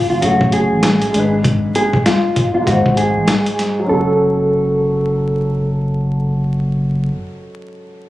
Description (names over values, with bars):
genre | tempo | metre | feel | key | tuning
hip hop, boom-bap hip-hop | 98 BPM | 4/4 | swing 60% on 16ths | F# harmonic minor | A4 = 437 Hz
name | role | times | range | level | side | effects
mellow electric guitar | melody | 0.0-5.7 s | E#4 to A4 | -18 LUFS | equal | high-pass filter, low-pass filter, ping-pong delay
dark concert grand piano | accompaniment | 0.0-8.1 s | G#2 to B#4 | -20 LUFS | equal | cassette tape, high-pass filter, low-pass filter
warm sub bass | bass | 0.1-7.1 s | F#1 to A1 | -19 LUFS | equal | none
boom bap sampler-style drum kit | drums | 0.2-3.8 s | hi-hat, kick drum, snare drum | -17 LUFS | equal | overdrive
room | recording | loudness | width
light reverb, digital ambience | recorded on a phone in the room, club reverb, vinyl crackle, compression | -13 LUFS | side -16 dB against mid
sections
0.0-3.9 A section; 3.9-6.3 B section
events
none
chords
0.2 F#madd9; 1.1 G#dim; 2.7 G#7; 3.9 F#m